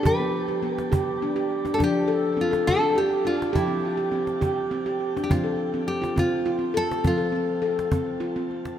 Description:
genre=world meditative, meditative tuned percussion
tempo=69 BPM (dotted quarters)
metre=6/8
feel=straight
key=F lydian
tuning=A4 = 439 Hz
part: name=nylon-string guitar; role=melody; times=0.0-8.2 s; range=E4 to B4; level=-28 LUFS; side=equal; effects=shimmer reverb, tape echo
part: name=handpan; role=arpeggios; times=0.0-8.8 s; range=F3 to A4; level=-24 LUFS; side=equal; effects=shimmer reverb, tape echo
part: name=cajon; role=percussion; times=0.1-8.8 s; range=none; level=-27 LUFS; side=equal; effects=none
room=wet concert hall reverb, RT60 1.9 s, small room ambience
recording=none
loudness=-22 LUFS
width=side -10 dB against mid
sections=0.0-5.3 A section; 5.3-8.8 B section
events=none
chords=0.0 G/F; 1.8 Dm/F; 3.6 C/F; 5.3 F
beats=| 0.06 0.94 | 1.81 2.68 | 3.55 4.43 | 5.30 6.17 | 7.04 7.92

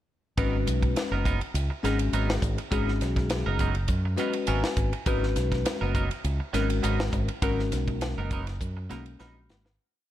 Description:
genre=electric jazz fusion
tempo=102 BPM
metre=4/4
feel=swing 53% on 16ths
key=G# minor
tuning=A4 = 440 Hz
part: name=bell-like tine electric piano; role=accompaniment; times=0.4-9.8 s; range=G#3 to B5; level=-31 LUFS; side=left 4 dB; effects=phaser
part: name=clean electric guitar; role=stabs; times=0.4-9.7 s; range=F#3 to A#4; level=-34 LUFS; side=right 6 dB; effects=lush chorus
part: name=fingered electric bass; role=bass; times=0.4-9.8 s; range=F#1 to F#2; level=-28 LUFS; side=equal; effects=none
part: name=crisp fusion drum kit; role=drums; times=0.4-9.8 s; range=hi-hat, kick drum, ride cymbal, snare drum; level=-31 LUFS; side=equal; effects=none
room=small room ambience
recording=none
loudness=-25 LUFS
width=side -13 dB against mid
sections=0.4-9.8 groove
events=tine electric piano fill 3.9-5.1, 8.9-9.8; fade-out 7.4-9.8; drum fill 9.2-9.8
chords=0.4 G#m9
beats=| 0.38 0.96 1.55 2.13 | 2.72 3.30 3.89 4.48 | 5.07 5.65 6.24 6.83 | 7.43 8.02 8.61 9.20

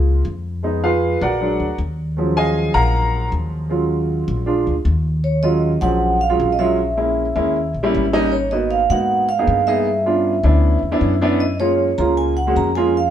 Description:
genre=Afro-Cuban jazz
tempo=156 BPM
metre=4/4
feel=straight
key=Eb minor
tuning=A4 = 440 Hz
part: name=warm baby grand piano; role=accompaniment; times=0.0-13.0 s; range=F3 to Bb5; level=-18 LUFS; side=right 1 dB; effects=none
part: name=upright bass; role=bass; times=0.0-13.1 s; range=Ab1 to Ab2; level=-20 LUFS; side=left 1 dB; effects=none
part: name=vibraphone with soft mallets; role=melody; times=5.2-13.1 s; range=Db5 to Bb5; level=-20 LUFS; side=right 2 dB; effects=none
room=moderate stone room reverb, RT60 1.1 s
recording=band playing live in one room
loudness=-16 LUFS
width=side -10 dB against mid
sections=0.0-5.2 A section; 5.2-13.1 B section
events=grand piano solo 0.0-5.2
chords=0.0 Gbmaj9 (rootless); 0.6 Fm7b5; 1.4 Bb7b13; 2.2 Ebm11; 4.5 Bb7; 5.2 Ebm11; 6.8 Bbm7b5; 7.6 Eb7b9; 8.3 Abm9; 9.9 G7#11; 11.4 Gbmaj9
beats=0.25 | 0.64 1.02 1.40 1.79 | 2.17 2.55 2.94 3.32 | 3.71 4.09 4.47 4.86 | 5.24 5.63 6.01 6.40 | 6.78 7.17 7.55 7.94 | 8.32 8.71 9.10 9.48 | 9.87 10.25 10.64 11.02 | 11.41 11.79 12.18 12.56 | 12.95

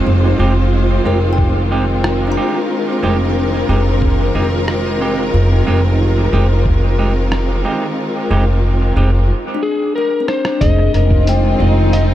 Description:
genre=ambient dub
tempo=91 BPM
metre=4/4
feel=straight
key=F dorian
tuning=A4 = 445 Hz
part: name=rich symphonic string section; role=sustained chords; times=0.0-12.1 s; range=Eb3 to C5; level=-19 LUFS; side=equal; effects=none
part: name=upright bass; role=bass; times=0.0-12.1 s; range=F1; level=-14 LUFS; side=equal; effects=none
part: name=semi-hollow electric guitar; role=stabs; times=0.4-9.1 s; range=Ab3 to G4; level=-23 LUFS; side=right 3 dB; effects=dub echo
part: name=kalimba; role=arpeggios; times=1.1-4.5, 9.5-12.1 s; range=C4 to Bb5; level=-23 LUFS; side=left 5 dB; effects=diffuse ambient delay
part: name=electronic kick drum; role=drums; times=1.4-11.2 s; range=none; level=-17 LUFS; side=equal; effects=studio reverb
part: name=lo-fi sampler-style drum kit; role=drums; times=2.0-12.1 s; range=hi-hat, rim click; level=-28 LUFS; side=right 1 dB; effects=none
part: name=electric slide guitar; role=melody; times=9.6-12.0 s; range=Ab4 to Eb5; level=-19 LUFS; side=left 2 dB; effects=vintage 12-bit sampler grit, diffuse ambient delay
part: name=wind-like tuned noise texture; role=texture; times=10.9-12.1 s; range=Eb3 to Eb4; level=-25 LUFS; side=left 1 dB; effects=none
room=light reverb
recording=none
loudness=-12 LUFS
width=side -13 dB against mid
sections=0.0-10.6 A section; 10.6-12.1 B section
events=break 9.3-10.6; drum fill 10.3-10.6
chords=0.0 Fm7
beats=| 0.07 0.72 1.38 2.04 | 2.70 3.36 4.02 4.68 | 5.34 6.00 6.66 7.32 | 7.98 8.64 9.30 9.96 | 10.61 11.27 11.93

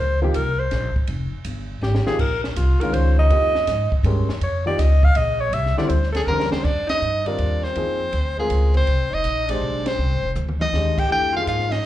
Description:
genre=modal jazz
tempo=162 BPM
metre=3/4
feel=swing 66% on 8ths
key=Bb dorian, F dorian from 6.6 s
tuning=A4 = 442 Hz
part: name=breathy alto saxophone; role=second line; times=0.0-11.9 s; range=Ab3 to F5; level=-25 LUFS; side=equal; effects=slapback echo
part: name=upright bass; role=bass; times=0.0-11.8 s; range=F1 to Ab2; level=-21 LUFS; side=equal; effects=none
part: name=warm upright piano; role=accompaniment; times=0.2-11.7 s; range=D3 to C5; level=-26 LUFS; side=left 1 dB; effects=slapback echo
part: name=compact cocktail drum kit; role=drums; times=0.3-11.8 s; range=crash cymbal, hi-hat, kick drum, ride cymbal, snare drum, toms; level=-29 LUFS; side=equal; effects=none
part: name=breathy soprano saxophone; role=melody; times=6.2-11.9 s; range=Ab4 to G5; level=-23 LUFS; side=equal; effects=slapback echo
room=little or no reverb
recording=live gig heard through the venue's PA, club reverb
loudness=-18 LUFS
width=side -13 dB against mid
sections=0.0-6.6 A section; 6.6-11.9 B section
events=alto saxophone solo 0.0-6.6; drum fill 1.8-2.2, 6.3-6.6, 10.4-10.7; band accent 6.8, 9.8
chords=0.0 Bbm6; 5.5 C; 6.6 Fm9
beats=0.35 0.72 | 1.09 1.46 1.83 | 2.20 2.57 2.94 | 3.31 3.68 4.05 | 4.42 4.79 5.16 | 5.53 5.90 6.27 | 6.64 7.01 7.39 | 7.76 8.13 8.50 | 8.88 9.25 9.62 | 9.99 10.36 10.73 | 11.11 11.48 11.85

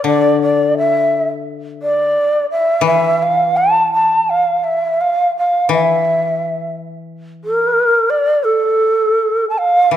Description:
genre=japanese traditional, Japanese chamber music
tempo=80-89 BPM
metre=2/4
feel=rubato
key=unclear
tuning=A4 = 441 Hz
part: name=breathy mellow long shakuhachi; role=melody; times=0.0-10.0 s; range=A4 to A5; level=-13 LUFS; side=right 1 dB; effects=none
part: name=koto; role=accompaniment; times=0.0-7.8, 9.9-10.0 s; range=D3 to E3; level=-19 LUFS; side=left 6 dB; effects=none
room=moderate scoring stage reverb, RT60 1.7 s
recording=minimal, uncompressed stereo recording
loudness=-13 LUFS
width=side -10 dB against mid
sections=0.0-9.9 A section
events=none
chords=none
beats=| 0.07 0.78 | 1.47 2.15 | 2.84 3.56 | 4.28 5.01 | 5.71 6.40 | 7.09 7.77 | 8.46 9.17 | 9.91

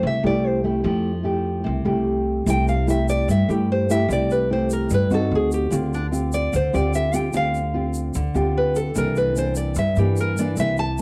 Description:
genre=bossa nova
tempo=148 BPM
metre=4/4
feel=straight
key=C major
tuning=A4 = 440 Hz
part: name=nylon-string guitar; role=melody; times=0.0-11.0 s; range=D4 to A5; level=-26 LUFS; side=equal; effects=cassette tape
part: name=nylon-string guitar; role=accompaniment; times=0.0-11.0 s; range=G2 to G4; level=-25 LUFS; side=equal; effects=cassette tape, plate reverb
part: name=upright bass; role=bass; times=0.0-11.0 s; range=C2 to G2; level=-27 LUFS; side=equal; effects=none
part: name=egg shaker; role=percussion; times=2.5-11.0 s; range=none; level=-40 LUFS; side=equal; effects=none
room=light reverb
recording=home recording on cassette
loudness=-21 LUFS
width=mono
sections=0.0-11.0 A section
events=nylon-string guitar solo 0.0-11.0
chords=0.0 Fmaj9; 2.5 C6; 5.3 D7b9; 5.7 G7sus4/D; 9.0 C9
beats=0.04 0.44 | 0.85 1.25 1.66 2.07 | 2.47 2.88 3.28 3.69 | 4.10 4.50 4.91 5.31 | 5.72 6.12 6.53 6.94 | 7.34 7.75 8.15 8.56 | 8.96 9.37 9.77 10.17 | 10.58 10.98

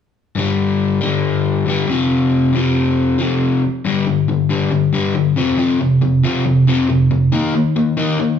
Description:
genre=rock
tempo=138 BPM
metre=4/4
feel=straight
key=G minor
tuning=A4 = 441 Hz
part: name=crunchy overdriven guitar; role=riff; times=0.4-8.4 s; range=F2 to Eb4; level=-14 LUFS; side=left 2 dB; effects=none
room=wet large studio reverb, RT60 0.9 s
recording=band playing live in one room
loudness=-14 LUFS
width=side -8 dB against mid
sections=0.4-3.8 A section; 3.8-8.4 B section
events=none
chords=0.4 G5; 1.9 F5; 3.8 G5; 5.4 F5; 7.3 Eb5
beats=| 0.37 0.81 1.24 1.68 | 2.11 2.54 2.98 3.41 | 3.85 4.28 4.72 5.15 | 5.58 6.02 6.45 6.89 | 7.32 7.76 8.19

